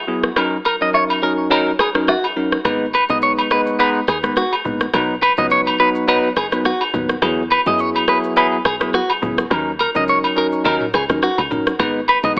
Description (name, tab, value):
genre	afrobeats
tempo	105 BPM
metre	4/4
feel	swing 55% on 16ths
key	G# minor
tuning	A4 = 440 Hz
part	bell-like tine electric piano	accompaniment	0.1-12.4 s	F#3 to B4	-19 LUFS	equal	phaser, low-pass filter
part	afro-pop drum kit	drums	0.2-12.4 s	kick drum, rim click, shaker, toms	-22 LUFS	equal	none
part	agogo bells and woodblock	percussion	0.4-12.2 s	none	-23 LUFS	equal	none
part	clean electric guitar	riff	0.7-12.4 s	F#4 to D#5	-18 LUFS	equal	low-pass filter, digital delay
part	deep log drum bass	bass	2.7-12.4 s	F#1 to F#2	-26 LUFS	equal	none
room	light reverb, digital ambience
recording	AM radio sound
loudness	-14 LUFS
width	side -31 dB against mid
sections	0.0-2.7 A section; 2.7-12.4 B section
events	kick muted 1.5-2.7, 2.7-11.8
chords	0.4 D#m7; 2.7 G#m; 4.9 B; 7.2 Eadd9; 9.5 D#m7; 11.8 G#m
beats	| 0.37 0.94 1.51 2.08 | 2.65 3.22 3.79 4.37 | 4.94 5.51 6.08 6.65 | 7.22 7.79 8.37 8.94 | 9.51 10.08 10.65 11.22 | 11.79 12.37